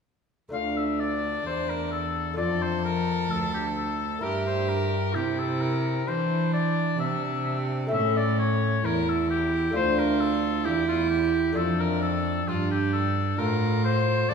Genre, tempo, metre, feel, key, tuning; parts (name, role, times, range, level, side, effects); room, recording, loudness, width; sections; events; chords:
classical, baroque-style sonata movement with continuo; 65 BPM; 4/4; rubato; D minor; A4 = 440 Hz
clear oboe; melody; 0.5-14.3 s; F4 to F5; -29 LUFS; left 6 dB
rich violin; second line; 0.5-14.3 s; C#4 to A4; -30 LUFS; right 6 dB
lute; accompaniment; 0.5-14.3 s; D2 to F4; -31 LUFS; equal
rich cello; bass; 0.5-14.3 s; D2 to E3; -28 LUFS; equal
wet recital hall reverb, RT60 1.6 s; heard from further back in the room; -23 LUFS; side -6 dB against mid
0.5-14.3 A section
0.5 Dm; 2.4 Dm/F; 4.2 Edim/G; 7.9 A; 9.7 Dm; 11.6 Dm/F